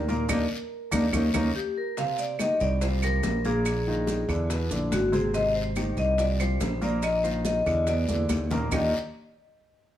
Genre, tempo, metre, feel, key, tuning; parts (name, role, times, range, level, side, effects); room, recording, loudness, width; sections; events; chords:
Afro-Cuban jazz; 142 BPM; 4/4; straight; Eb major; A4 = 440 Hz
vibraphone with medium hard mallets; melody; 0.0-8.9 s; Gb4 to F5; -28 LUFS; left 1 dB; plate reverb
modern bright fingered electric bass; bass; 0.0-8.9 s; G#1 to Fb2; -27 LUFS; equal
warm concert grand piano; accompaniment; 0.1-8.9 s; Bb2 to C5; -31 LUFS; equal
congas; percussion; 0.1-8.8 s; -33 LUFS; left 1 dB
guiro; percussion; 0.1-8.8 s; -43 LUFS; left 4 dB
maracas; percussion; 0.1-8.8 s; -42 LUFS; right 6 dB
bongos; percussion; 0.3-8.8 s; -37 LUFS; left 5 dB
claves; percussion; 0.3-8.8 s; -37 LUFS; right 6 dB
moderate studio reverb, RT60 0.8 s; small room ambience; -24 LUFS; side -12 dB against mid
0.0-2.0 A section; 2.0-8.7 B section; 8.7-10.0 C section
band accent 0.3-2.0; drum fill 1.3-2.0, 8.1-8.7
0.0 Eb5; 2.0 Cmadd9; 2.8 C7sus4; 3.7 Bb7sus4; 4.5 E7; 5.3 Abmaj7; 6.2 C7sus4; 7.0 Bbsus4; 7.9 E5; 8.7 Ebmaj9